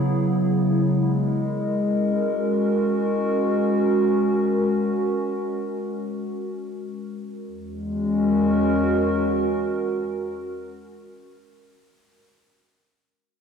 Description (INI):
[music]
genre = ambient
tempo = free time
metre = none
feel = none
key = E lydian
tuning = A4 = 440 Hz
[part]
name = warbly tape-like pad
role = solo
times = 0.0-10.9 s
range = E2 to A#4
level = -21 LUFS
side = equal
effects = chorus, built-in reverb, tape echo
[sound]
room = wet lush hall reverb, RT60 2.5 s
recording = dark, warm production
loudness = -20 LUFS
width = side -6 dB against mid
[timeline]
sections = 0.0-7.5 A section; 7.5-10.8 B section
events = none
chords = 0.0 C#m; 0.8 F#7; 7.5 E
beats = free time